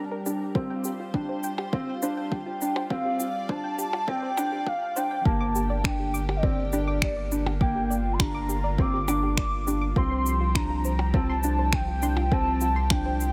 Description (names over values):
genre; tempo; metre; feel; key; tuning
piano and strings electronica; 102 BPM; 4/4; straight; G minor; A4 = 440 Hz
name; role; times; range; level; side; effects
warm velvety synth lead; melody; 0.0-13.3 s; D5 to D6; -33 LUFS; equal; chorus
lush unison pad; sustained chords; 0.0-13.3 s; D3 to D5; -39 LUFS; equal; chorus
soft round pluck; arpeggios; 0.0-13.1 s; F4 to D6; -41 LUFS; equal; chorus, cassette tape, sidechain pumping, delay
felt-muted upright piano; riff; 0.3-13.2 s; Bb3 to D4; -33 LUFS; equal; delay
electronic shaker, percussion blips and finger snaps; drums; 0.3-13.3 s; none; -33 LUFS; equal; high-pass filter on perc, high-pass filter on snare
electronic kick drum; drums; 0.6-13.0 s; none; -29 LUFS; equal; overdrive
round analog bass; bass; 5.3-13.3 s; G1 to C2; -30 LUFS; equal; tube saturation, sidechain pumping
room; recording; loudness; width
light reverb; high-pass filter; -26 LUFS; mono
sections
0.0-5.3 A section; 5.3-13.3 B section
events
build-up 0.0-5.3; filter sweep on soft synth lead 0.0-5.3; drop 5.3-13.3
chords
0.0 Gm; 0.6 Csus4; 5.3 Gm; 10.0 Csus4